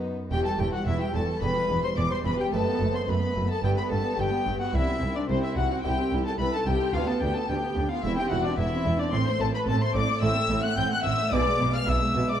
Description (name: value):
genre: classical, baroque-style concerto movement with solo episodes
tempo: 109 BPM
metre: 4/4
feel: straight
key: E minor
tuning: A4 = 440 Hz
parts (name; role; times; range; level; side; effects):
- rich violin; melody; 0.0-12.4 s; C5 to G6; -32 LUFS; left 2 dB; none
- warm studio violin section; melody; 0.0-12.4 s; C5 to G6; -34 LUFS; left 5 dB; none
- warm symphonic violin section; second line; 0.0-12.4 s; C4 to G5; -31 LUFS; left 2 dB; none
- harpsichord; accompaniment; 0.0-12.4 s; C2 to B4; -33 LUFS; equal; none
- warm chamber viola section; accompaniment; 0.0-12.4 s; E3 to E4; -32 LUFS; right 2 dB; none
- warm chamber cello section; bass; 0.0-12.2 s; C2 to B2; -32 LUFS; right 2 dB; none
- rich chamber double bass section; bass; 0.3-12.2 s; E1 to D2; -30 LUFS; right 2 dB; none
room: wet recital hall reverb, RT60 1.5 s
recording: dark, warm production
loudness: -23 LUFS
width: side -10 dB against mid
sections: 0.3-12.4 A section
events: none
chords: 0.3 Em; 2.5 B7/F#; 3.6 Em/G; 4.7 C; 6.9 G7/D; 8.0 C/E; 9.1 Am; 11.3 E/B